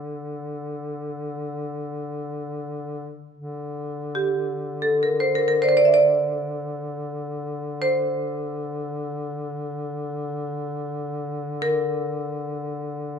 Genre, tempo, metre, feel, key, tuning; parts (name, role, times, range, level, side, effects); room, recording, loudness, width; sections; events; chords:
caucasian folk, Caucasian lament; free time; A4 = 440 Hz
marimba with hard mallets; melody; 0.0-13.2 s; G4 to E5; -20 LUFS; right 1 dB
mellow duduk; drone; 0.0-13.2 s; D3; -29 LUFS; left 2 dB
moderate recital hall reverb, RT60 1.4 s; minimal, uncompressed stereo recording; -23 LUFS; side -7 dB against mid
0.0-3.3 A section; 3.3-13.2 A section